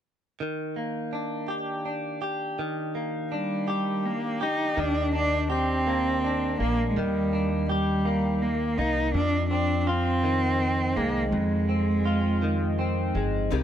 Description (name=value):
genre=pop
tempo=55 BPM (dotted quarters)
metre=6/8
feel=straight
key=Eb major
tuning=A4 = 440 Hz
part: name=direct-recorded clean electric guitar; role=accompaniment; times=0.4-13.6 s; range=F2 to G4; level=-28 LUFS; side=left 1 dB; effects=double-tracked left and right
part: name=rich cello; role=melody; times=3.3-13.1 s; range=G3 to Eb4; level=-26 LUFS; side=right 2 dB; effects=tape echo
part: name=upright bass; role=bass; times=4.8-13.6 s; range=G1 to F2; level=-29 LUFS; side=left 1 dB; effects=none
part: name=picked steel-string acoustic guitar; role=arpeggios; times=13.5-13.6 s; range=C3 to G4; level=-29 LUFS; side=left 10 dB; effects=none
room=light reverb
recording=dry, close 1970s-style studio recording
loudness=-24 LUFS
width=side -10 dB against mid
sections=0.4-4.8 A section; 4.8-13.6 B section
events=none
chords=0.4 Ebmaj7; 9.1 Fm7